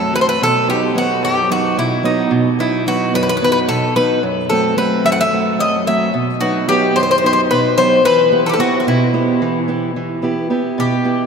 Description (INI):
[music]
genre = greek folk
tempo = 220 BPM (eighths)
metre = 7/8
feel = straight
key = E harmonic minor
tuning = A4 = 441 Hz
[part]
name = Greek bouzouki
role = melody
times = 0.0-11.3 s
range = D#4 to F#5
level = -16 LUFS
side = left 2 dB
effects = none
[part]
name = fingerpicked steel-string acoustic guitar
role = accompaniment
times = 0.0-11.3 s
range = F#2 to G4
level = -17 LUFS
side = right 3 dB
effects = none
[sound]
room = wet cathedral reverb, RT60 5.3 s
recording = in a vast, echoing space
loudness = -13 LUFS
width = side -6 dB against mid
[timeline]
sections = 0.0-10.0 A section; 10.0-11.3 B section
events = none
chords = 0.4 B; 4.2 F#dim; 6.1 B; 8.0 Em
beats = 0.14 | 0.41 0.68 0.95 1.23 1.50 1.77 2.04 | 2.32 2.59 2.86 3.13 3.41 3.68 3.95 | 4.23 4.50 4.77 5.04 5.32 5.59 5.86 | 6.14 6.41 6.68 6.96 7.23 7.50 7.77 | 8.05 8.32 8.59 8.87 9.14 9.41 9.68 | 9.96 10.23 10.50 10.78 11.05